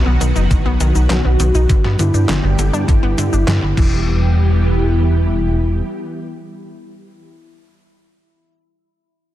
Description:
synthwave; 101 BPM; 4/4; straight; E minor; A4 = 440 Hz
warm velvety synth lead; melody; 0.0-7.2 s; E4 to F#4; -24 LUFS; equal; chorus, vintage 12-bit sampler grit, tape echo
analog string pad; sustained chords; 0.0-7.2 s; D3 to G4; -23 LUFS; equal; ensemble chorus, sidechain pumping
chorused synth bass; bass; 0.0-5.8 s; E1 to G2; -15 LUFS; equal; sidechain pumping
wide unison pluck; arpeggios; 0.1-4.3 s; D3 to D#4; -24 LUFS; left 2 dB; tape echo
detuned 8-bit digital drum machine; drums; 0.2-3.9 s; crash cymbal, handclaps, hi-hat, shaker, snare drum; -25 LUFS; equal
electronic kick drum; drums; 0.5-3.9 s; -15 LUFS; equal
light reverb; dense, heavily limited modern master, lossy compression artefacts; -13 LUFS; side -14 dB against mid
0.0-4.1 A section; 4.1-6.4 B section
0.0 B; 1.7 G; 3.8 Em

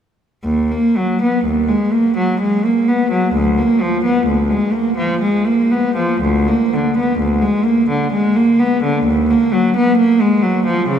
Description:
classical, baroque-style suite movement for unaccompanied cello; 63 BPM; 3/4; uneven beats, rubato; Eb minor; A4 = 435 Hz
rich cello; solo; 0.4-11.0 s; D2 to Cb4; -13 LUFS; equal
wet cathedral reverb, RT60 5.3 s; minimal, uncompressed stereo recording; -13 LUFS; side -8 dB against mid
0.4-11.0 A section

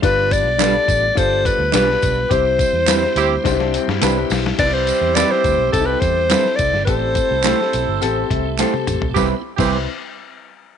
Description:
uptempo 1960s-style soul; 105 BPM; 4/4; straight; C major; A4 = 440 Hz
clear alto saxophone; melody; 0.0-8.5 s; A4 to D5; -18 LUFS; left 2 dB
warm upright piano; accompaniment; 0.0-9.9 s; C4 to A5; -23 LUFS; left 11 dB
tonewheel organ; sustained chords; 0.0-9.4 s; G3 to G4; -30 LUFS; right 17 dB; fast rotary speaker, overdrive, chorus vibrato
vintage muted fingered electric bass; bass; 0.0-9.9 s; G1 to G2; -23 LUFS; right 1 dB
lo-fi sampler-style drum kit; drums; 0.0-9.7 s; crash cymbal, hi-hat, kick drum, snare drum, toms; -23 LUFS; left 2 dB
tambourine and handclaps; percussion; 0.0-9.9 s; -27 LUFS; right 16 dB
mellow electric guitar; stabs; 0.6-9.8 s; G3 to C5; -23 LUFS; right 14 dB
warm horn section; second line; 2.3-9.8 s; E3 to A4; -24 LUFS; right 12 dB
electric guitar through a small old amp; riff; 3.5-4.6 s; D3 to E4; -27 LUFS; left 12 dB
light reverb, small room ambience; 1960s-style stereo with parts hard left and right, nothing above 10.4 kHz; -15 LUFS; side -8 dB against mid
0.0-4.6 A section; 4.6-9.2 B section; 9.2-10.8 C section
band accent 2.3-4.6; drum fill 3.4-4.6, 8.6-9.2; upright piano fill 8.0-9.2
0.0 G7; 2.3 Cmaj7; 6.9 Am7; 9.2 Cmaj7

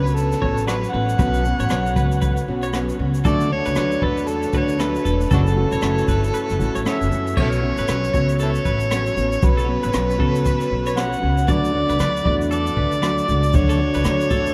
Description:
acoustic pop; 117 BPM; 4/4; swing 60% on 16ths; B minor; A4 = 438 Hz
overdriven harmonica; melody; 0.0-14.5 s; D4 to F#5; -26 LUFS; equal
fingerpicked plugged-in steel-string acoustic guitar; accompaniment; 0.0-14.5 s; F#2 to F#4; -26 LUFS; equal
twelve-string electric guitar; arpeggios; 0.0-14.5 s; A4 to D5; -34 LUFS; equal
upright bass; bass; 0.0-14.5 s; E1 to F#2; -25 LUFS; equal
jazz brush drum kit; drums; 0.1-14.5 s; crash cymbal, kick drum, rim click, shaker; -27 LUFS; equal
wet huge ambient reverb, RT60 8.3 s; in a vast, echoing space; -20 LUFS; mono
0.0-7.4 A section; 7.4-14.5 B section
0.0 Bsus2; 3.3 D; 5.3 F#m7; 7.4 Bsus2; 11.5 D

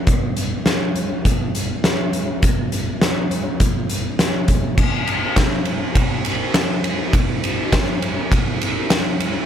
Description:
rock; 102 BPM; 4/4; straight
oversized low-tuned drum kit; drums; 0.1-9.3 s; crash cymbal, hi-hat, kick drum, ride cymbal, snare drum; -17 LUFS; equal
little or no reverb; -17 LUFS; side -9 dB against mid
0.0-4.8 A section; 4.8-9.5 B section
build-up 4.8-9.5

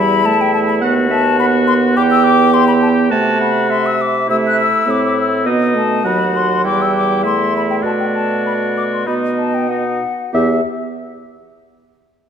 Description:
quick classical-period movement for wind quintet; 92-106 BPM; 4/4; rubato; E minor; A4 = 436 Hz
hollow concert flute; melody; 0.0-10.7 s; E5 to F#6; -19 LUFS; left 7 dB
warm oboe; second line; 0.0-10.6 s; D#4 to E5; -22 LUFS; left 2 dB
bright clarinet; accompaniment; 0.0-10.6 s; G4 to A5; -21 LUFS; right 8 dB
warm French horn; accompaniment; 0.0-10.6 s; F#3 to C4; -18 LUFS; right 2 dB
mellow bassoon; bass; 0.0-10.6 s; D#2 to C3; -19 LUFS; right 1 dB
wet scoring stage reverb, RT60 2.1 s; -12 LUFS; side -8 dB against mid
0.0-10.3 A section; 10.3-12.3 B section
slowing down 4.3-10.3
0.0 Em; 0.8 B/D#; 2.0 Em; 3.1 Am/C; 4.3 Amadd11; 5.5 B7; 6.7 Em; 7.8 B5; 9.1 B; 10.3 Em

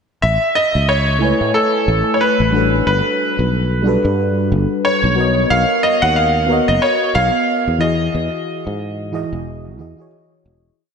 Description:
sunset chillout; 91 BPM; 4/4; swing 57% on 16ths; A lydian; A4 = 439 Hz
bright concert grand piano; melody; 0.2-10.1 s; A4 to F#5; -17 LUFS; right 1 dB; vintage 12-bit sampler grit, analog delay
sustaining fretless electric bass; bass; 0.2-10.7 s; E1 to A2; -19 LUFS; equal
mellow FM electric piano; accompaniment; 1.2-10.8 s; E3 to G#5; -19 LUFS; moving between left 5 dB and right 3 dB; chorus, auto-pan, analog delay
wet lush hall reverb, RT60 3.3 s; dreamy mix soaked in reverb; -14 LUFS; side -6 dB against mid
0.2-10.8 groove
fade-out 7.3-10.8
0.2 Amaj9; 2.9 Gmaj9; 5.2 Bmaj9; 7.8 Emaj9

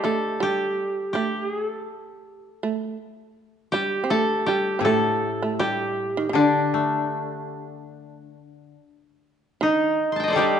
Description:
japanese traditional, Japanese chamber music; 69-82 BPM; 4/4; rubato; D in sen; A4 = 440 Hz
koto; melody; 0.0-10.6 s; D4 to C6; -23 LUFS; equal
shamisen; second line; 0.0-10.6 s; D3 to C4; -27 LUFS; right 4 dB
koto; accompaniment; 4.8-10.6 s; A2 to A3; -27 LUFS; left 5 dB
moderate recital hall reverb, RT60 1.6 s; dark, warm production, nothing above 10.6 kHz; -21 LUFS; side -8 dB against mid
0.0-9.6 A section; 9.6-10.6 B section

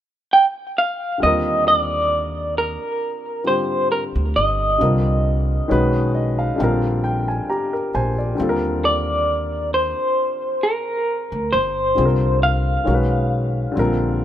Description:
R&B; 67 BPM; 4/4; swing 53% on 16ths; Eb major; A4 = 440 Hz
electric guitar through a small old amp; melody; 0.3-14.2 s; Bb4 to G5; -19 LUFS; equal; tremolo
warm grand piano; accompaniment; 1.2-14.2 s; D3 to Bb5; -22 LUFS; left 2 dB
upright bass; bass; 1.2-14.2 s; G1 to Eb2; -22 LUFS; equal
studio ambience; rough home demo mix; -17 LUFS; side -11 dB against mid
0.0-1.2 A section; 1.2-14.2 B section
grand piano fill 5.7-8.4
0.0 N.C.; 1.2 Ebmaj7; 4.8 Cm9; 5.7 Badd9; 6.6 Bb; 8.4 Ebmaj7; 12.0 Csus2; 12.8 Badd9; 13.7 Bb

